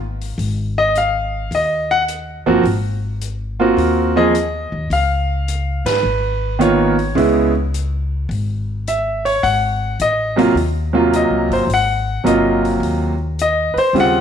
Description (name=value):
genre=jazz piano trio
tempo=106 BPM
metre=4/4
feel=swing 68% on 8ths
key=Ab mixolydian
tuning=A4 = 440 Hz
part: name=upright bass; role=bass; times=0.0-14.2 s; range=G1 to Ab2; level=-22 LUFS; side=left 1 dB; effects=none
part: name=swinging big-band drum kit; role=drums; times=0.2-14.1 s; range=hi-hat, ride cymbal, snare drum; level=-32 LUFS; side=left 11 dB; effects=none
part: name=clear grand piano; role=melody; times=0.8-14.2 s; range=C3 to Gb5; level=-15 LUFS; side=right 1 dB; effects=slapback echo
room=light reverb, studio reverb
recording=1960s-style stereo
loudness=-15 LUFS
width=side -8 dB against mid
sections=0.0-14.2 A section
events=band accent 5.8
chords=0.4 Ab5; 4.9 Db7; 9.4 Ab13